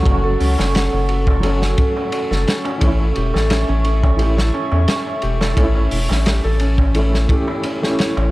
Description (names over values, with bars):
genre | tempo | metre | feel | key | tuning
trip hop | 87 BPM | 4/4 | straight | unclear | A4 = 440 Hz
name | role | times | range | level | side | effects
dark upright piano | accompaniment | 0.0-8.3 s | E3 to G4 | -24 LUFS | equal | tremolo, vintage 12-bit sampler grit, tape echo
dark analog pad | sustained chords | 0.0-8.3 s | A4 to Db6 | -25 LUFS | right 2 dB | chorus, vintage 12-bit sampler grit
felt-muted upright piano | arpeggios | 0.0-8.3 s | C#4 to C#5 | -24 LUFS | left 1 dB | tape echo
round analog bass | bass | 0.0-8.3 s | E1 to E2 | -17 LUFS | equal | none
crunchy breakbeat drum kit | drums | 0.1-8.3 s | hi-hat, kick drum, ride cymbal, snare drum | -20 LUFS | equal | none
darbuka | percussion | 0.1-8.3 s | none | -33 LUFS | right 2 dB | none
room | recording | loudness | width
light reverb, studio ambience | dark, warm production | -15 LUFS | side -18 dB against mid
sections
0.0-8.3 A section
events
none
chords
0.0 F#m; 2.8 A